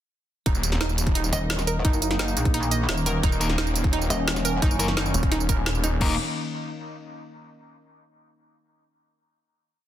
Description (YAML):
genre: dark technical drum and bass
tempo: 173 BPM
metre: 4/4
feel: straight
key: Eb minor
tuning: A4 = 440 Hz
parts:
  - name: sweeping resonant pad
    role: sustained chords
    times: 0.5-6.2 s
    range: Eb3 to Eb5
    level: -31 LUFS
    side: equal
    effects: chorus, phaser, sidechain pumping
  - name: analog pluck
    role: arpeggios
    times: 0.5-6.2 s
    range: Eb4 to Eb5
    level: -31 LUFS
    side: right 2 dB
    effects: chorus, sidechain pumping, dub echo
  - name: snarling distorted saw bass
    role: bass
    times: 0.5-6.2 s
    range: Eb1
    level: -26 LUFS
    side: equal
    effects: distortion, tube saturation, sidechain pumping
  - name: drum and bass drum kit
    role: drums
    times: 0.5-6.1 s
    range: crash cymbal, hi-hat, snare drum, tambourine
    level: -28 LUFS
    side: right 1 dB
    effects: overdrive, small room ambience
  - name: electronic kick drum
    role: drums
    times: 0.5-6.1 s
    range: none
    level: -23 LUFS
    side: equal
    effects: small room ambience
  - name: pulsing pluck wobble bass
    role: bass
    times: 1.3-5.1 s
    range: Eb1 to Bb1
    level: -26 LUFS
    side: equal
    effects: chorus
  - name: sludgy distorted guitar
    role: stabs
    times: 3.4-6.1 s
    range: Bb3 to Bb4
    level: -32 LUFS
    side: left 3 dB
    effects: overdrive, dub echo
room: light reverb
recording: dense, heavily limited modern master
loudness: -21 LUFS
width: side -12 dB against mid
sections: 0.5-6.0 drop; 6.0-7.4 final chord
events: drop 0.5-6.0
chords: 0.5 Eb5